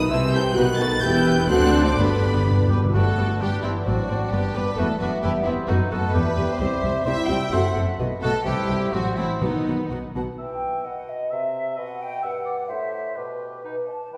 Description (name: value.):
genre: quick classical-period movement for symphony orchestra.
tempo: 129 BPM.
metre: 2/4.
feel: rubato.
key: G major.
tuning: A4 = 440 Hz.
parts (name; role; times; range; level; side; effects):
warm studio violin section; melody; 0.0-10.2 s; D5 to A6; -34 LUFS; equal; none.
mellow cor anglais; second line; 0.0-14.2 s; B3 to E5; -34 LUFS; equal; none.
mellow bassoon; accompaniment; 0.0-14.2 s; G2 to C4; -34 LUFS; equal; none.
mellow French horn section; sustained chords; 0.0-9.9 s; D#3 to A4; -30 LUFS; equal; none.
bright studio double bass section; bass; 0.0-10.2 s; E1 to D2; -30 LUFS; equal; none.
rich studio cello section; bass; 0.0-10.2 s; C2 to C3; -29 LUFS; equal; none.
mellow hollow flute section; second line; 0.1-14.2 s; B4 to A5; -33 LUFS; equal; none.
rich studio violin section; second line; 0.1-9.9 s; D#4 to G5; -32 LUFS; equal; none.
rich studio viola section; accompaniment; 0.1-10.2 s; G3 to C5; -32 LUFS; equal; none.
timpani; percussion; 2.0-2.9, 9.4-10.1 s; G2 to B2; -27 LUFS; equal; none.
room: wet scoring stage reverb, RT60 1.8 s.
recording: heard from further back in the room.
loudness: -23 LUFS.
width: mono.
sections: 0.0-2.9 A section; 2.9-10.4 B section; 10.4-14.2 A section.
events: timpani fill 2.0-2.9.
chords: 0.1 Am/C; 0.6 B; 1.0 Em; 1.5 D7; 2.0 G; 3.9 D7/A; 4.3 G; 4.8 E5; 5.7 B7/F#; 6.1 Em; 6.6 C; 7.5 F#m7b5; 8.0 B7; 8.5 C; 8.9 F#dim/A; 9.4 B; 10.4 N.C.; 10.9 B; 11.3 C; 11.8 B; 12.2 Em/G; 12.7 Am; 13.2 G/B.